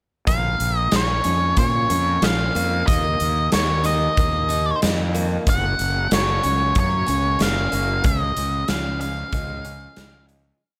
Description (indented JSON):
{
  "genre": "quiet-loud alternative rock",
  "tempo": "93 BPM",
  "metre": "4/4",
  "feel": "straight",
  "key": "Bb minor",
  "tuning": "A4 = 440 Hz",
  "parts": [
    { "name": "octave-fuzz lead guitar", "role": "melody", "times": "0.3-10.2 s", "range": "Db5 to Gb5", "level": "-25 LUFS", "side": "equal", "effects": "distortion" },
    { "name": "picked steel-string acoustic guitar", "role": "arpeggios", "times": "0.3-10.6 s", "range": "Gb2 to Eb4", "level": "-31 LUFS", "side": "equal", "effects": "digital delay" },
    { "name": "fuzz fingered electric bass", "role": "bass", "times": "0.3-10.5 s", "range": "Gb1 to Bb2", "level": "-26 LUFS", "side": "equal", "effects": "overdrive" },
    { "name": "big rock drum kit", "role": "drums", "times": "0.3-10.4 s", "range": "hi-hat, kick drum, snare drum", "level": "-26 LUFS", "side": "equal", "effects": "none" }
  ],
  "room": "light reverb",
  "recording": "none",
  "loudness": "-20 LUFS",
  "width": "mono",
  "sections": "0.3-10.6 verse",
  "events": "fade-out 8.0-10.6",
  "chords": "0.3 Bbm; 2.9 Eb5; 5.5 Gb; 8.0 Db"
}